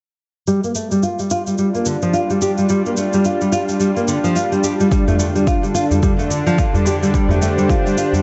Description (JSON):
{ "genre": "organic downtempo", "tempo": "108 BPM", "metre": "4/4", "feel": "swing 59% on 16ths", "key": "unclear", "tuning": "A4 = 440 Hz", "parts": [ { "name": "bowed-like drone", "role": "sustained chords", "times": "0.8-8.2 s", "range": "D3 to C5", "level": "-23 LUFS", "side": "equal", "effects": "built-in reverb, sidechain pumping" }, { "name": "nylon-string guitar", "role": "arpeggios", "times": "0.5-8.2 s", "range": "D3 to G4", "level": "-20 LUFS", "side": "equal", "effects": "low-pass filter, delay" }, { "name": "cabasa", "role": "drums", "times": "0.5-8.2 s", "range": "none", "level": "-32 LUFS", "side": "equal", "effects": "none" }, { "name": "electronic kick drum", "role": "drums", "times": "4.9-7.8 s", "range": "none", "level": "-20 LUFS", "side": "equal", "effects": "overdrive" }, { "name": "darbuka", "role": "percussion", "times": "5.1-8.2 s", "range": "none", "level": "-23 LUFS", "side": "equal", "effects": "none" } ], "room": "moderate recital hall reverb, RT60 1.6 s, studio reverb", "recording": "nothing above 7.9 kHz", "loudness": "-17 LUFS", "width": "mono", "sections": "0.5-8.2 A section", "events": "filter sweep on nylon-string guitar 0.5-8.2", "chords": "0.5 G7(no3); 4.9 D7sus4", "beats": "| 0.47 1.03 1.58 2.14 | 2.69 3.25 3.81 4.36 | 4.92 5.47 6.03 6.58 | 7.14 7.69" }